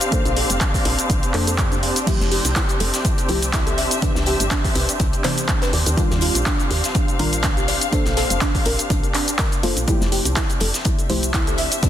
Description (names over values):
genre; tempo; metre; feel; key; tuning
deep house; 123 BPM; 4/4; swing 55% on 16ths; F major; A4 = 440 Hz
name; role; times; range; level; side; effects
deep house drum kit; drums; 0.0-11.9 s; crash cymbal, handclaps, hi-hat, shaker; -23 LUFS; equal; overdrive, studio reverb
muted studio string section; texture; 0.0-11.9 s; C4 to F5; -25 LUFS; left 1 dB; sidechain pumping
warbly dusty pluck; arpeggios; 0.1-11.9 s; D4 to F5; -28 LUFS; right 2 dB; chorus, sidechain pumping, ping-pong delay
deep mellow chord stab; stabs; 0.1-11.9 s; C3 to C5; -28 LUFS; left 1 dB; chorus, sidechain pumping, ping-pong delay
electronic kick drum; drums; 0.1-11.9 s; none; -22 LUFS; equal; overdrive, studio reverb
woody FM bass; bass; 0.3-11.7 s; F1 to F2; -24 LUFS; equal; sidechain pumping
modern studio drum kit; drums; 2.1-11.9 s; hi-hat, snare drum; -32 LUFS; left 3 dB; sidechain pumping on hats, high-pass filter on hats, studio reverb, soft clipping on snare, high-pass filter on snare, high-pass filter on room
room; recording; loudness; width
light reverb, small room ambience; dense, heavily limited modern master; -17 LUFS; side -11 dB against mid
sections
0.0-11.9 A section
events
filter sweep on synth pluck 0.0-11.9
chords
0.1 Bbmaj9; 2.1 Fmaj9; 4.0 Cmaj9; 5.7 Ebmaj9; 7.9 Bbmaj9; 9.9 Fmaj9